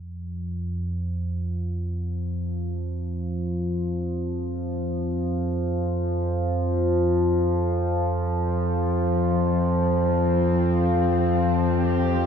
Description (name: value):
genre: dark ambient drone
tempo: free time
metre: none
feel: none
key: unclear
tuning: A4 = 440 Hz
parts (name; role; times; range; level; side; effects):
- analog drone; drone; 0.0-12.3 s; F2 to F3; -22 LUFS; equal; chorus
- dark studio cello section; sustained chords; 8.3-12.3 s; F3 to G4; -27 LUFS; left 2 dB; shimmer reverb
room: wet cathedral reverb, RT60 4.7 s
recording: in a vast, echoing space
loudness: -22 LUFS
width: side -7 dB against mid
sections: 0.0-12.3 A section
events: none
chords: 0.0 F5